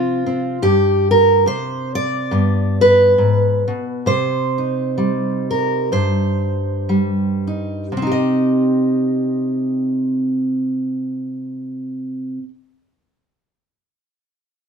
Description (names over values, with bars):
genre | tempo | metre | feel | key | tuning
folk, solo fingerstyle acoustic guitar | 57-72 BPM | 4/4 | swing 56% on 8ths | C minor | A4 = 438 Hz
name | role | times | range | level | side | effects
fingerpicked steel-string acoustic guitar | solo | 0.0-12.5 s | G2 to Eb5 | -16 LUFS | equal | none
room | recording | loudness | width
moderate studio reverb, RT60 0.8 s | minimal, uncompressed stereo recording | -16 LUFS | side -6 dB against mid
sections
0.0-7.9 A section; 7.9-12.1 B section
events
slowing down 0.6-7.9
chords
0.0 F5; 0.6 C5/G; 2.3 G; 4.0 Cm